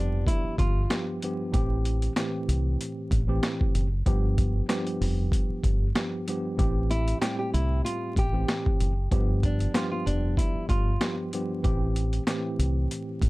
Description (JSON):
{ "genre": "hip hop, boom-bap hip-hop", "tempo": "95 BPM", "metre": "4/4", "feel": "swing 54% on 16ths", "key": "A minor", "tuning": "A4 = 441 Hz", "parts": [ { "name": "nylon-string guitar", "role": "melody", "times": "0.0-1.0, 6.9-11.2 s", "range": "D4 to G4", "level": "-33 LUFS", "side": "equal", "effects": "high-pass filter, low-pass filter, tape echo" }, { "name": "tine electric piano", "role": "accompaniment", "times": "0.0-13.3 s", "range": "G2 to G4", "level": "-31 LUFS", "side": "equal", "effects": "overdrive, fast stereo tremolo, high-pass filter, low-pass filter" }, { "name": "deep dub fingered electric bass", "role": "bass", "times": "0.0-13.3 s", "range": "F1 to C2", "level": "-26 LUFS", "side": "equal", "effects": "none" }, { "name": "boom bap sampler-style drum kit", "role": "drums", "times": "0.3-13.3 s", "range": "hi-hat, kick drum, snare drum", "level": "-27 LUFS", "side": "equal", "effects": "none" } ], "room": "little or no reverb", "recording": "dark, warm production, vinyl crackle", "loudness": "-24 LUFS", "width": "side -21 dB against mid", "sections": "0.0-13.3 A section", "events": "none", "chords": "0.0 G7; 1.5 Am7; 4.1 G7; 6.6 Am7; 9.1 G7; 11.6 Am7" }